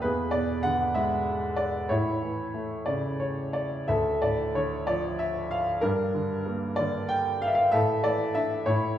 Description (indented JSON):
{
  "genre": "classical, lyrical solo piano",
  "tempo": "63 BPM (dotted quarters)",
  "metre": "6/8",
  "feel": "rubato",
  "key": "unclear",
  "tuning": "A4 = 439 Hz",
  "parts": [
    { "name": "warm concert grand piano", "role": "solo", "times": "0.0-9.0 s", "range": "D2 to G5", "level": "-25 LUFS", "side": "equal", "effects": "none" }
  ],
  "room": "wet recital hall reverb, RT60 1.5 s",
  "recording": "recorded in a church or concert hall",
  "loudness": "-25 LUFS",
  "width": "side -11 dB against mid",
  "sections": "0.0-9.0 A section",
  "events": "none",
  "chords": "0.0 E7; 1.9 A; 3.9 Dm; 5.8 Gm; 7.7 Asus4",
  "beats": "| 0.03 0.96 | 1.91 2.88 | 3.88 4.87 | 5.83 6.79 | 7.74 8.67"
}